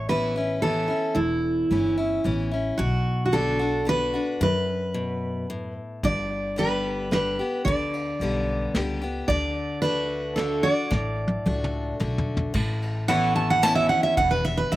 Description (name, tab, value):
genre	honky-tonk and classic country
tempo	111 BPM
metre	3/4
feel	straight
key	unclear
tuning	A4 = 437 Hz
part	picked steel-string acoustic guitar	melody	0.0-14.8 s	E4 to A5	-24 LUFS	right 2 dB	slapback echo
part	picked steel-string acoustic guitar	accompaniment	0.0-14.8 s	E2 to G4	-28 LUFS	left 3 dB	none
part	upright bass	bass	0.0-14.8 s	E1 to F#2	-30 LUFS	equal	none
part	vintage brush drum kit	drums	6.0-14.8 s	crash cymbal, kick drum, ride cymbal, snare drum, toms	-31 LUFS	equal	none
part	pedal steel guitar	sustained chords	13.1-14.8 s	E4 to C#5	-34 LUFS	left 1 dB	lush chorus
room	little or no reverb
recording	recorded outdoors, with no room sound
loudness	-22 LUFS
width	side -15 dB against mid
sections	0.0-12.5 A section; 12.5-14.8 B section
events	drum fill 10.9-12.5; steel-string acoustic guitar solo 12.5-14.8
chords	0.0 Aadd9; 2.8 Bm; 6.0 G; 9.3 D; 12.5 Aadd9